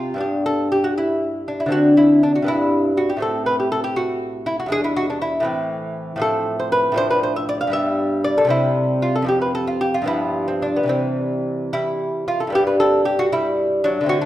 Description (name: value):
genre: classical, baroque-style dance for lute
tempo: 71-82 BPM (dotted quarters)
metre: 6/8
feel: rubato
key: G major, C major from 6.2 s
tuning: A4 = 439 Hz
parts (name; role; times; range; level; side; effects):
- lute; solo; 0.0-14.3 s; E2 to F5; -17 LUFS; equal; none
room: wet recital hall reverb, RT60 1.4 s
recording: faint mains hum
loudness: -17 LUFS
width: side -14 dB against mid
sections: 0.2-12.6 A section; 12.6-14.3 A section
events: none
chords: 0.2 G; 1.7 D9; 2.5 G; 3.2 Am; 4.7 E7; 5.5 Am; 6.2 F/A; 7.0 Dm/A; 7.7 G; 8.5 C; 9.3 F5; 10.1 G7; 10.9 C; 12.6 G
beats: | 0.21 0.98 | 1.73 2.48 | 3.23 3.97 | 4.71 5.47 | 6.22 6.97 | 7.74 8.50 | 9.27 10.07 | 10.88 11.72 | 12.55 13.32 | 14.09